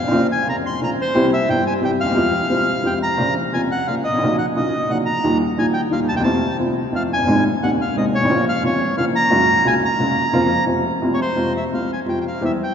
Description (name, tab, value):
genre	tango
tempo	176 BPM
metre	3/4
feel	rubato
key	F harmonic minor, Bb minor from 3.2 s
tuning	A4 = 438 Hz
part	bandoneon	melody	0.0-12.7 s	C5 to C6	-20 LUFS	equal	none
part	warm upright piano	accompaniment	0.0-12.6 s	Eb1 to G4	-18 LUFS	equal	none
room	wet cathedral reverb, RT60 6.6 s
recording	recorded in a church or concert hall, vinyl crackle, nothing above 7.8 kHz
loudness	-16 LUFS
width	side -7 dB against mid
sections	0.0-3.2 A section; 3.2-11.4 B section; 11.4-12.7 A section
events	none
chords	0.1 Bbm; 1.1 C; 2.2 Fmadd9; 3.2 Bbm; 4.2 Gb6/Bb; 5.2 Ebadd9; 6.3 F; 7.3 Abadd9; 8.3 Bbm; 9.3 Gbadd9; 10.3 Bbm/F; 10.7 F; 11.4 Fm